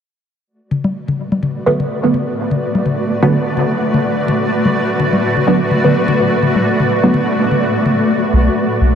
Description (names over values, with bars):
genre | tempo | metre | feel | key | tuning
dub techno | 126 BPM | 4/4 | swing 56% on 16ths | B minor | A4 = 440 Hz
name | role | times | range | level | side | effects
granular cloud pad | sustained chords | 1.3-8.9 s | A3 to D5 | -16 LUFS | equal | built-in reverb
electronic toms and congas | percussion | 0.7-8.0 s | none | -20 LUFS | left 3 dB | dub echo
filtered dub chord stab | stabs | 1.7-7.1 s | D3 to B3 | -18 LUFS | right 1 dB | chorus, phaser, dub echo
soft dub sub bass | bass | 8.3-8.9 s | B1 | -11 LUFS | equal | none
room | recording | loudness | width
wet huge ambient reverb, RT60 7.4 s | dreamy mix soaked in reverb | -13 LUFS | side -8 dB against mid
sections
0.5-8.1 A section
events
filter sweep on synth stab 0.5-8.1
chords
0.5 Bm7